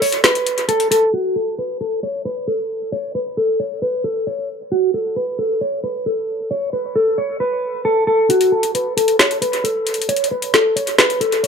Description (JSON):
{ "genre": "hip hop, trap", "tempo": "134 BPM", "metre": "4/4", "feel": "half-time", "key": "unclear", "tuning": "A4 = 444 Hz", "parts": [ { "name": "mellow electric guitar", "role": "melody", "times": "0.0-11.5 s", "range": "F#4 to C#5", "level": "-17 LUFS", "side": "equal", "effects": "wide subtle chorus, low-pass filter, dub echo" }, { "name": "trap drum kit", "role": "drums", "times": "0.0-1.0, 8.3-11.5 s", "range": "hi-hat, snare drum", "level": "-17 LUFS", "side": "equal", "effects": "dub echo" } ], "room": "moderate plate reverb, RT60 1.2 s", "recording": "echo-heavy mix, low-pass filter", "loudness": "-16 LUFS", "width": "side -6 dB against mid", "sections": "0.0-1.1 A section; 1.1-8.3 B section; 8.3-11.5 C section", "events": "break 0.0-1.1; filter sweep 1.1-8.3; kick muted 8.3-11.5; filter sweep on clean electric guitar 8.3-11.5", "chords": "none" }